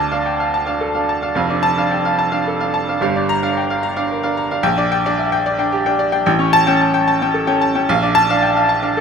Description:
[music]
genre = classical, virtuoso piano study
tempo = 74 BPM (dotted quarters)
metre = 6/8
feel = rubato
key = D minor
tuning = A4 = 438 Hz
[part]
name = bright baby grand piano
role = solo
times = 0.0-9.0 s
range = F1 to Bb5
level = -14 LUFS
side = equal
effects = none
[sound]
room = little or no reverb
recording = close, detailed microphones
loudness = -14 LUFS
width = side -6 dB against mid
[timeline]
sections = 0.0-9.0 A section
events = none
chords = 0.0 Dm; 1.4 Dm/F; 3.0 Gm7; 4.6 Gm/Bb; 6.3 A7; 7.9 Bbmaj7

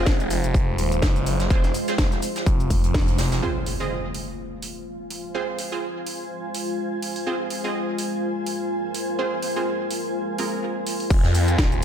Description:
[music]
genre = bass house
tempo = 125 BPM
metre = 4/4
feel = swing 56% on 16ths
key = F minor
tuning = A4 = 436 Hz
[part]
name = deep dark ambient pad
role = sustained chords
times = 0.0-11.8 s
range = Ab3 to C5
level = -30 LUFS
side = equal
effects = chorus, built-in reverb, sidechain pumping
[part]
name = orchestra-hit-like synth stab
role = stabs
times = 0.0-10.5 s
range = C4 to Eb5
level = -29 LUFS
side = right 4 dB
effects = built-in reverb, cassette tape, sidechain pumping, digital delay
[part]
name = phased detuned saw bass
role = bass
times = 0.0-3.4, 11.1-11.8 s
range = Eb1 to F2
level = -23 LUFS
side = equal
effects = phaser, tube saturation, sidechain pumping
[part]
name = electronic kick drum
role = drums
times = 0.1-3.1, 11.1-11.7 s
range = none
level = -20 LUFS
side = equal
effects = none
[part]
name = house drum kit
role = drums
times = 0.1-11.8 s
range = crash cymbal, hi-hat, shaker, snare drum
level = -31 LUFS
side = equal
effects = overdrive
[part]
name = soft brush drum kit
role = drums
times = 0.1-3.4, 11.1-11.8 s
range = hi-hat, snare drum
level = -34 LUFS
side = right 1 dB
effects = high-pass filter on hats, high-pass filter on snare, high-pass filter on room
[part]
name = impact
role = sound effects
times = 3.4-5.3 s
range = none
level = -32 LUFS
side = left 1 dB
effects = none
[part]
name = granular cloud pad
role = texture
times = 4.4-11.8 s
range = F4 to Ab5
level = -30 LUFS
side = equal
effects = built-in reverb, sidechain pumping
[sound]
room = light reverb, digital ambience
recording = none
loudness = -21 LUFS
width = side -9 dB against mid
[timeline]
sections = 0.0-3.4 A section; 3.4-11.1 B section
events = filter sweep on detuned saw bass 0.0-3.4; band accent 2.9; impact 3.4-5.3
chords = 0.0 Fm

